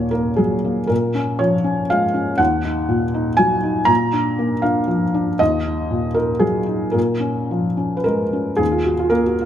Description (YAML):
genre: neoclassical minimalist piano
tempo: 108-122 BPM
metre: 3/4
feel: rubato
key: Eb minor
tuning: A4 = 444 Hz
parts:
  - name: felt-muted upright piano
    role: solo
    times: 0.0-9.5 s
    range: Eb2 to Bb5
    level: -16 LUFS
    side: equal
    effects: none
room: light reverb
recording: close, detailed microphones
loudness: -16 LUFS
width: side -10 dB against mid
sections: 0.0-8.6 A section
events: none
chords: 0.0 Ebm; 0.9 Bbm7; 2.4 Ebm; 3.9 Bb; 5.4 Ebm; 7.0 Bbm7; 8.6 Ebmadd9